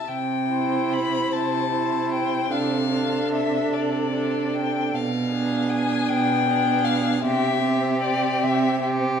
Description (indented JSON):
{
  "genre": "classical, slow romantic movement for string quartet",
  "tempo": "50 BPM (dotted quarters)",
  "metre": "6/8",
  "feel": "uneven beats, rubato",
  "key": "C major",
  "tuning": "A4 = 440 Hz",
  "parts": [
    { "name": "rich violin", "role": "melody", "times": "0.0-8.8 s", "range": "D5 to B5", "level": "-26 LUFS", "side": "left 9 dB", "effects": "none" },
    { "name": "rich viola", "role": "accompaniment", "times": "0.0-9.2 s", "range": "C4 to E4", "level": "-26 LUFS", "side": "right 3 dB", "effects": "none" },
    { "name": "rich cello", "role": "bass", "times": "0.1-9.2 s", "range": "B2 to C3", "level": "-26 LUFS", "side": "right 5 dB", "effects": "none" },
    { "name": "rich violin", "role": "second line", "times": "0.5-9.2 s", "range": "G4 to C5", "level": "-28 LUFS", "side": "left 2 dB", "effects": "none" }
  ],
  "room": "wet recital hall reverb, RT60 1.7 s",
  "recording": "none",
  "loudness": "-20 LUFS",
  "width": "side -7 dB against mid",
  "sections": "0.1-9.2 A section",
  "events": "none",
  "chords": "0.1 C; 2.5 Dm7/C; 4.9 Bdim7; 7.2 C"
}